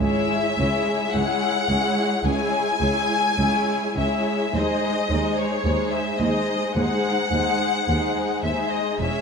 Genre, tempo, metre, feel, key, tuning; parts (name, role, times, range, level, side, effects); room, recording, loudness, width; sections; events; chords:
classical, slow romantic movement for string orchestra; 53 BPM; 4/4; rubato; C# minor; A4 = 440 Hz
rich studio violin section; melody; 0.0-9.2 s; C#5 to G#5; -24 LUFS; left 4 dB
dark studio violin section; second line; 0.0-9.2 s; G#4 to C#5; -27 LUFS; left 3 dB
dark studio viola section; accompaniment; 0.0-9.2 s; G#3 to E4; -26 LUFS; right 1 dB
clear studio double bass section; bass; 0.0-9.1 s; E1 to D#2; -29 LUFS; right 3 dB
warm studio cello section; bass; 0.0-9.1 s; C#2 to E2; -28 LUFS; right 2 dB
wet recital hall reverb, RT60 1.6 s; dark, warm production; -20 LUFS; side -5 dB against mid
0.0-9.2 A section
0.0 C#m; 4.5 G#7/D#